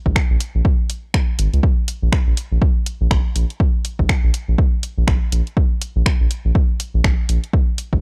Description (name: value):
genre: minimal techno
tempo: 122 BPM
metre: 4/4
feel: swing 60% on 16ths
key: Bb minor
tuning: A4 = 435 Hz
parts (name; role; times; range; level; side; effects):
- saturated sub bass; bass; 0.1-8.0 s; Ab1 to Db2; -20 LUFS; equal; tube saturation, sidechain pumping
- electronic kick drum; drums; 0.1-8.0 s; none; -19 LUFS; equal; overdrive, studio reverb
- punchy analog drum machine; drums; 0.2-7.9 s; finger snaps, hi-hat; -27 LUFS; equal; overdrive, studio reverb
room: little or no reverb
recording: dry, gritty hardware recording, transformer saturation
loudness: -18 LUFS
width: mono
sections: 0.0-8.0 A section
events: none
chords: none